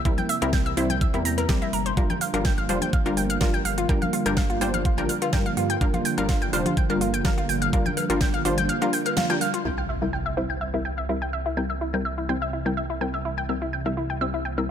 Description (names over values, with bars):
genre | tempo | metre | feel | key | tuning
progressive house | 125 BPM | 4/4 | straight | unclear | A4 = 441 Hz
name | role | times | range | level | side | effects
warm analog pad | sustained chords | 0.0-14.7 s | C3 to E5 | -32 LUFS | right 2 dB | chorus, sidechain pumping
analog pluck | arpeggios | 0.1-14.6 s | E4 to Bb5 | -28 LUFS | equal | chorus, sidechain pumping, digital delay
wide unison pluck | stabs | 0.1-14.7 s | G3 to C5 | -28 LUFS | left 2 dB | cassette tape, sidechain pumping, digital delay
dark detuned saw bass | bass | 0.1-14.7 s | F1 to G2 | -31 LUFS | equal | sidechain pumping
electronic kick drum | drums | 0.1-8.3 s | none | -24 LUFS | equal | none
pop drum kit | drums | 0.1-9.6 s | hi-hat, snare drum | -32 LUFS | right 1 dB | sidechain pumping on hats, sidechain pumping on cymbals
congas and cowbell | percussion | 0.2-9.3 s | none | -33 LUFS | left 4 dB | sidechain pumping on perc
impact | sound effects | 9.7-11.6 s | none | -36 LUFS | right 1 dB | none
room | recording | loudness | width
light reverb, digital ambience | none | -22 LUFS | side -9 dB against mid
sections
0.0-9.7 A section; 9.7-14.7 B section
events
band accent 9.2; impact 9.7-11.6; filter sweep on synth pluck 9.7-14.7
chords
0.0 C7; 2.0 Gm7; 9.7 C7